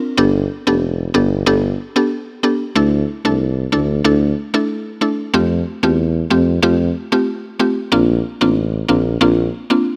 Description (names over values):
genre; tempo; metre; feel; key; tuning
dancehall; 93 BPM; 4/4; straight; D minor; A4 = 436 Hz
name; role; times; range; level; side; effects
mallet-like synth pluck; accompaniment; 0.0-10.0 s; A3 to Bb4; -18 LUFS; equal; chorus
warm tuba; bass; 0.2-9.5 s; F1 to F2; -20 LUFS; equal; none
room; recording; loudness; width
light reverb, studio reverb; none; -17 LUFS; mono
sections
0.0-10.0 A section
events
none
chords
0.2 Gadd9; 2.8 Dsus2; 5.3 Fadd9; 7.9 Bbadd9